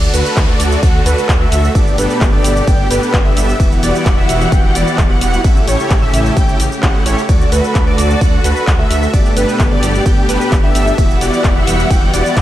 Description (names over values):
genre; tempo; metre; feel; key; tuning
EDM, festival progressive house; 130 BPM; 4/4; straight; D major; A4 = 438 Hz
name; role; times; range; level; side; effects
warm symphonic string section; sustained chords; 0.0-12.4 s; B2 to F#5; -21 LUFS; left 1 dB; sidechain pumping
wide unison lead; arpeggios; 0.0-12.4 s; B4 to G5; -20 LUFS; equal; ensemble chorus, sidechain pumping, tape echo
supersaw chords; riff; 0.0-12.4 s; B3 to G5; -19 LUFS; equal; cassette tape, sidechain pumping, tape echo
wide detuned saw bass; bass; 0.0-12.4 s; E1 to D2; -18 LUFS; equal; chorus, sidechain pumping
house drum kit; drums; 0.0-12.4 s; handclaps, hi-hat, ride cymbal, shaker; -22 LUFS; equal; studio ambience
downlifter; sound effects; 0.0-3.6 s; none; -28 LUFS; equal; none
electronic kick drum; drums; 0.4-12.4 s; none; -13 LUFS; equal; studio ambience
room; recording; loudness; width
light reverb, digital ambience; none; -10 LUFS; side -13 dB against mid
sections
0.0-12.4 A section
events
none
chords
0.0 D; 1.8 Gadd9; 3.6 Emadd9; 5.4 A7; 7.3 D; 9.1 Gadd9; 11.0 Emadd9